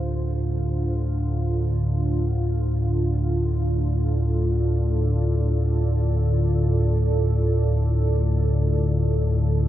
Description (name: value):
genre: dark ambient drone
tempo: free time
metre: none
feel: none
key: D minor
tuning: A4 = 440 Hz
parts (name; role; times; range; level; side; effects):
- deep dark ambient pad; sustained chords; 0.0-9.7 s; D3 to D5; -26 LUFS; right 1 dB; chorus, built-in reverb
- deep rumbling drone; drone; 0.0-9.7 s; D2 to A2; -21 LUFS; equal; built-in reverb
room: moderate huge ambient reverb, RT60 8.5 s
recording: none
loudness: -20 LUFS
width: side -13 dB against mid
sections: 0.0-9.7 A section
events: none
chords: 0.0 Dm7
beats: free time